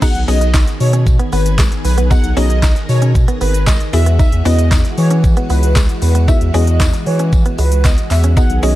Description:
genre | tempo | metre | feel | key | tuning
dance-pop | 115 BPM | 4/4 | straight | B major | A4 = 440 Hz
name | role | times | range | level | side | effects
airy dreamy lead | melody | 0.0-8.8 s | B4 to F#5 | -22 LUFS | equal | chorus, digital delay
mallet-like synth pluck | accompaniment | 0.0-8.8 s | B3 to B4 | -22 LUFS | left 4 dB | chorus, sidechain pumping
ensemble organ-string | sustained chords | 0.0-8.8 s | D#3 to A#4 | -24 LUFS | left 1 dB | ensemble chorus, sidechain pumping
direct-recorded clean electric guitar | riff | 0.0-8.7 s | G#3 to D#4 | -25 LUFS | right 5 dB | analog chorus
smooth R&B drum kit | drums | 0.0-8.8 s | crash cymbal, handclaps, hi-hat, kick drum, shaker, snare drum | -14 LUFS | equal | none
tambourine | percussion | 0.0-8.8 s | none | -33 LUFS | left 8 dB | none
saturated sub bass | bass | 0.2-8.8 s | G#1 to E3 | -13 LUFS | equal | sidechain pumping
room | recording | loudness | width
little or no reverb | dark, warm production | -11 LUFS | side -15 dB against mid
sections
0.0-8.8 A section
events
drop 0.0-8.8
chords
0.0 B6; 3.9 Eadd9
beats
| 0.02 0.54 1.06 1.59 | 2.11 2.63 3.15 3.67 | 4.20 4.72 5.24 5.76 | 6.28 6.80 7.33 7.85 | 8.37

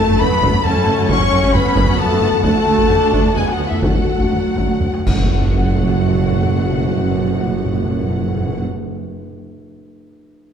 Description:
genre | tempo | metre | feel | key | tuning
cinematic, epic orchestral film score | 114-134 BPM | 3/4 | straight | F# minor | A4 = 439 Hz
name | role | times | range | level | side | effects
rich symphonic violin section | melody | 0.0-8.6 s | E5 to C#6 | -29 LUFS | left 4 dB | none
small flute group | second line | 0.0-8.6 s | E5 to C#6 | -25 LUFS | left 4 dB | none
warm symphonic violin section | second line | 0.0-8.6 s | E5 to C#6 | -27 LUFS | left 2 dB | none
warm symphonic viola section | accompaniment | 0.0-8.6 s | A3 to F#4 | -25 LUFS | right 1 dB | none
dark French horn section | sustained chords | 0.0-8.6 s | E4 to C#5 | -22 LUFS | left 5 dB | none
warm symphonic string section | sustained chords | 0.0-8.7 s | A3 to F#5 | -27 LUFS | left 1 dB | none
warm trombone section | sustained chords | 0.0-8.6 s | E3 to C#4 | -26 LUFS | right 3 dB | none
rich symphonic cello section | bass | 0.0-8.6 s | D2 to F#2 | -23 LUFS | right 3 dB | none
timpani | percussion | 0.0-0.4, 5.1-8.7 s | F#2 | -23 LUFS | equal | none
taiko ensemble | drums | 0.1-6.1 s | none | -20 LUFS | equal | none
rich symphonic double bass section | bass | 0.2-8.6 s | F#1 to D2 | -24 LUFS | right 4 dB | none
warm tuba | bass | 0.2-8.6 s | F#1 to D2 | -25 LUFS | right 4 dB | none
clash cymbals and concert bass drum | percussion | 5.1-6.3 s | none | -22 LUFS | equal | none
impact | sound effects | 5.1-6.9 s | none | barely audible | none | none
room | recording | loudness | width
moderate scoring stage reverb, RT60 2.1 s | dark, warm production | -14 LUFS | side -8 dB against mid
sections
0.0-5.3 A section; 5.3-8.5 B section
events
slowing down 1.8-5.3; band accent 5.3-5.9; impact 5.3-6.9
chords
0.0 F#m; 2.4 D; 5.1 F#m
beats
0.20 0.65 | 1.09 1.54 1.99 | 2.44 2.89 3.36 | 3.83 4.31 4.81 | 5.33 5.86 6.38 | 6.91 7.43 7.96

